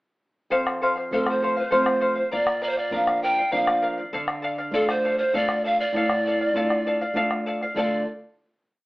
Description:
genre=andean folk, Andean ensemble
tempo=99 BPM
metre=3/4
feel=straight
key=D minor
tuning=A4 = 440 Hz
part: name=charango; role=accompaniment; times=0.5-8.0 s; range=A4 to F5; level=-26 LUFS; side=left 1 dB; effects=none
part: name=flamenco guitar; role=accompaniment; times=0.5-8.0 s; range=F2 to A4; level=-29 LUFS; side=equal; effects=none
part: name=bombo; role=percussion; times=0.5-8.0 s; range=none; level=-30 LUFS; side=left 1 dB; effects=none
part: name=breathy reedy pan flute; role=melody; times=1.1-8.0 s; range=A4 to G5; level=-23 LUFS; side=right 1 dB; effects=none
room=wet studio reverb, RT60 0.6 s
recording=band playing live in one room, AM radio sound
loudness=-21 LUFS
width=side -20 dB against mid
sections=0.5-7.8 A section; 7.8-8.9 final chord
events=none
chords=0.5 F; 2.3 Bb; 4.1 Dm

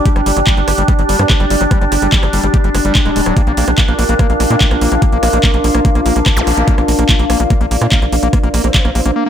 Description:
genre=psychedelic trance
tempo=145 BPM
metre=4/4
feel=straight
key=unclear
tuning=A4 = 440 Hz
part: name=overtone-sweeping drone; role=sustained chords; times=0.0-9.2 s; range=D4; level=-18 LUFS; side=equal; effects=chorus, built-in reverb, sidechain pumping
part: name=warbly tape-like pad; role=texture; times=0.0-9.2 s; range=F4 to G5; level=-20 LUFS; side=left 2 dB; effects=chorus, built-in reverb, sidechain pumping
part: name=screaming distorted acid line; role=riff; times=0.1-9.3 s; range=F#3 to G4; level=-21 LUFS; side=moving between left 3 dB and right 4 dB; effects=distortion, chorus, auto-pan, sidechain pumping, digital delay
part: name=electronic kick drum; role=drums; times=0.1-8.8 s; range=none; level=-13 LUFS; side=equal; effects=overdrive
part: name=garage drum kit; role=drums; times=0.1-9.1 s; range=handclaps, hi-hat, rim click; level=-19 LUFS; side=right 1 dB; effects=overdrive
part: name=tight sequencer bass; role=bass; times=0.2-9.1 s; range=D1 to Bb2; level=-16 LUFS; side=equal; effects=none
part: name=vowel-sweep wobble bass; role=second line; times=1.2-9.2 s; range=G3 to D4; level=-29 LUFS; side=right 3 dB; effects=none
part: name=zap and reverse cymbal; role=sound effects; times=6.4-6.5, 9.3 s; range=none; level=-22 LUFS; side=equal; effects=none
room=light reverb, digital ambience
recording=none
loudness=-10 LUFS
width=side -9 dB against mid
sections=0.0-9.3 A section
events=none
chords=0.0 G5; 3.4 Bb5

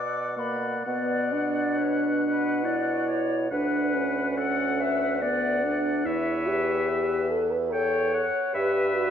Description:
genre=classical, slow romantic movement for wind quintet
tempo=70 BPM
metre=3/4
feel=uneven beats, rubato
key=B minor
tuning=A4 = 440 Hz
part: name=concert flute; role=melody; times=0.0-9.1 s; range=B4 to D6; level=-31 LUFS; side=left 6 dB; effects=none
part: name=clear oboe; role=second line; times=0.0-9.1 s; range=E5 to G5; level=-31 LUFS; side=left 2 dB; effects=none
part: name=bright clarinet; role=accompaniment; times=0.0-9.1 s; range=A4 to D5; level=-35 LUFS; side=right 8 dB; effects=none
part: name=warm bassoon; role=bass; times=0.0-9.1 s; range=D2 to B2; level=-32 LUFS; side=right 3 dB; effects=none
part: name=mellow French horn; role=accompaniment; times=0.4-9.1 s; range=A#3 to B4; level=-27 LUFS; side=equal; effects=none
room=moderate scoring stage reverb, RT60 1.8 s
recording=dark, warm production, nothing above 7.9 kHz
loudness=-23 LUFS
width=side -8 dB against mid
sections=0.9-9.1 A section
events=none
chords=0.0 Bm; 3.5 Bm/D; 6.1 Em; 8.5 Em/G

